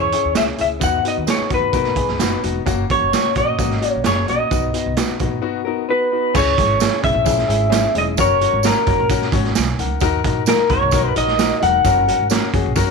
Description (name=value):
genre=uptempo 1960s-style soul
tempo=131 BPM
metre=4/4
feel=straight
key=C# dorian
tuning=A4 = 442 Hz
part: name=electric guitar through a small old amp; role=melody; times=0.0-12.3 s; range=A#4 to F#5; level=-18 LUFS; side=left 1 dB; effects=wide subtle chorus
part: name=warm grand piano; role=accompaniment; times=0.0-12.9 s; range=A#3 to G#5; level=-23 LUFS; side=left 14 dB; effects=none
part: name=upright bass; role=bass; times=0.0-12.9 s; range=E1 to F#2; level=-23 LUFS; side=right 1 dB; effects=none
part: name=raw garage drum kit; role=drums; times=0.1-12.9 s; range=crash cymbal, hi-hat, kick drum, snare drum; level=-21 LUFS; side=right 5 dB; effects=none
part: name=tambourine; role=percussion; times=0.4-12.9 s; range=none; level=-31 LUFS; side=right 15 dB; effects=none
part: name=hollow-body jazz guitar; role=riff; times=1.7-2.6, 5.4-6.3, 12.8-12.9 s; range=F#4 to C#5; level=-28 LUFS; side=left 15 dB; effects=none
part: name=congas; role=percussion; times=6.4-12.9 s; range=none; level=-32 LUFS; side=right 12 dB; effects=none
room=light reverb, small room ambience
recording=1960s-style stereo with parts hard left and right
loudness=-15 LUFS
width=side -4 dB against mid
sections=0.0-6.4 A section; 6.4-12.9 B section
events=none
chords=0.0 C#m; 0.8 B/D#; 2.7 F#; 4.5 B; 6.4 C#m; 8.2 F#; 10.0 D#m; 11.8 F#